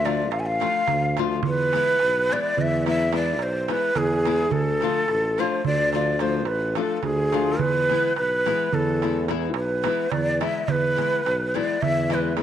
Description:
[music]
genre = balkan folk, Balkan wedding band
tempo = 214 BPM (eighths)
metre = 11/8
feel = straight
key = E phrygian dominant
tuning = A4 = 441 Hz
[part]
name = breathy bright ney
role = melody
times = 0.0-12.4 s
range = G#4 to G#5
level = -23 LUFS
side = equal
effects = none
[part]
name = nylon-string guitar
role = accompaniment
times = 0.0-12.4 s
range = E3 to F4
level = -29 LUFS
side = left 10 dB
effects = none
[part]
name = warm tuba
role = bass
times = 0.0-12.4 s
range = A1 to E2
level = -27 LUFS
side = equal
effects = none
[part]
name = darbuka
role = percussion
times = 0.1-12.4 s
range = none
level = -30 LUFS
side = right 9 dB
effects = none
[sound]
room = wet spring reverb, RT60 1.9 s, small room reverb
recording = 1960s-style stereo with parts hard left and right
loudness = -20 LUFS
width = side -10 dB against mid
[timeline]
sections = 0.0-12.4 A section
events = none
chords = 0.0 Dm; 1.4 E; 4.5 Dm; 7.6 E

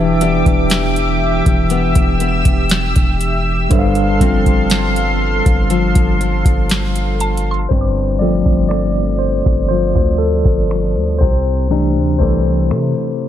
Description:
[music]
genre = contemporary R&B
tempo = 60 BPM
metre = 4/4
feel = straight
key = unclear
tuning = A4 = 444 Hz
[part]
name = mellow tine electric piano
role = accompaniment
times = 0.0-13.3 s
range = E3 to A5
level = -19 LUFS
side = right 1 dB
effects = medium stereo tremolo
[part]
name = lush unison pad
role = sustained chords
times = 0.0-7.7 s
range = G4 to E6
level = -20 LUFS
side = equal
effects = chorus, sidechain pumping
[part]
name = nylon-string guitar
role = arpeggios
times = 0.0-13.3 s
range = G2 to G4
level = -21 LUFS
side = left 7 dB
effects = none
[part]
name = long sustained 808-style bass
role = bass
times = 0.0-12.9 s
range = E1 to C3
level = -18 LUFS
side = equal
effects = none
[part]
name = booming analog drum machine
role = drums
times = 0.2-13.2 s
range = finger snaps, hi-hat, kick drum, snare drum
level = -15 LUFS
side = equal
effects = none
[part]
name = mallet-like synth pluck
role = texture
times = 7.2-8.7 s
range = A5 to D6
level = -26 LUFS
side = right 3 dB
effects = chorus, ping-pong delay
[sound]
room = little or no reverb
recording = low-pass filter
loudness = -12 LUFS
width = side -11 dB against mid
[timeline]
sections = 0.0-7.7 A section; 7.7-13.3 B section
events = tine electric piano solo 7.7-13.3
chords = 0.0 Em7; 3.7 G9sus4; 11.2 C69

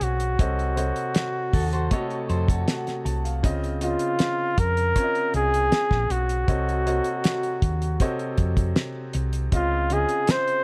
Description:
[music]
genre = lush 1970s-style soul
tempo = 79 BPM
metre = 4/4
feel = straight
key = unclear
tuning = A4 = 442 Hz
[part]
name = breathy flugelhorn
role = melody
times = 0.0-10.6 s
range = F4 to C5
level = -27 LUFS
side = equal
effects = none
[part]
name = warm concert grand piano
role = accompaniment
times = 0.0-10.6 s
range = C3 to A5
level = -33 LUFS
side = equal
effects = none
[part]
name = hollow-body short-scale fingered electric bass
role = bass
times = 0.0-10.0 s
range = Bb1 to F2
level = -28 LUFS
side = equal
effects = none
[part]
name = cloth-damped thuddy drum kit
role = drums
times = 0.0-10.6 s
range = hi-hat, kick drum, snare drum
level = -26 LUFS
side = equal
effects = none
[part]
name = electric guitar through a small old amp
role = riff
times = 1.5-3.4 s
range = Gb4 to Db5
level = -35 LUFS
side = equal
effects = spring reverb
[sound]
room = little or no reverb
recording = none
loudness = -24 LUFS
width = mono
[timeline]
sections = 0.0-10.6 A section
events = none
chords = 0.4 F7b9b13/C; 3.4 Dbmaj9; 6.5 F7b9b13/C (rootless); 9.5 Dbmaj9

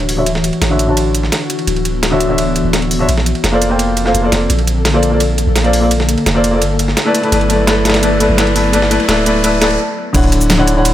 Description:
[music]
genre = liquid drum and bass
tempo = 170 BPM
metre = 4/4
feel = straight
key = D major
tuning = A4 = 440 Hz
[part]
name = felt-muted upright piano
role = accompaniment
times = 0.0-10.9 s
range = D3 to A5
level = -15 LUFS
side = left 1 dB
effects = low-pass filter, tape echo
[part]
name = ethereal airy pad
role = sustained chords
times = 0.0-10.9 s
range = D3 to C#5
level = -20 LUFS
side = left 2 dB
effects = ensemble chorus, built-in reverb
[part]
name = long sustained 808-style bass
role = bass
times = 0.0-10.9 s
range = D1 to Bb1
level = -17 LUFS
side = equal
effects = none
[part]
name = dusty soul sampler-style drum kit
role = drums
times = 0.0-10.9 s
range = hi-hat, ride cymbal, snare drum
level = -20 LUFS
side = right 1 dB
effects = high-pass filter on cymbals, high-pass filter on snare, high-pass filter on hats
[part]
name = pop drum kit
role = drums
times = 0.1-10.9 s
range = cabasa, crash cymbal, hi-hat, snare drum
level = -19 LUFS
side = right 1 dB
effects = none
[part]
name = riser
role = sound effects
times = 6.2-9.8 s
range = none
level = -26 LUFS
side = right 1 dB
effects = none
[part]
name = electronic kick drum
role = drums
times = 10.1-10.2 s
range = none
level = -15 LUFS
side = equal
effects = none
[sound]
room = light reverb, digital ambience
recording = none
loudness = -11 LUFS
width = side -12 dB against mid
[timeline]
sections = 0.0-10.1 A section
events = build-up 0.0-10.1; filter sweep on felt piano 0.0-10.1; riser 6.2-9.8; stop 9.8-10.1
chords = 0.0 Dmaj9; 3.1 Bbmaj9; 6.6 Gmaj9; 10.1 Dmaj9

